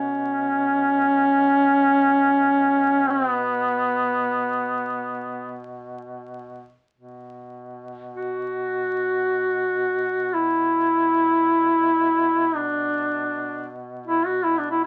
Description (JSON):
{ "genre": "caucasian folk, Caucasian lament", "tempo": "free time", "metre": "none", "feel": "none", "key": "B minor", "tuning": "A4 = 440 Hz", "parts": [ { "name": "clear duduk", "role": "melody", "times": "0.0-14.9 s", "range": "B3 to F#4", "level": "-22 LUFS", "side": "equal", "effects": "none" }, { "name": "warm duduk", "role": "drone", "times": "0.0-14.9 s", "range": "B2", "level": "-38 LUFS", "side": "equal", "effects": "none" } ], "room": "moderate studio ambience, RT60 0.4 s", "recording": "very old 78 rpm record, vinyl crackle", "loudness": "-21 LUFS", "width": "mono", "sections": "0.0-6.9 A section; 6.9-14.9 A section", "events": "none", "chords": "none" }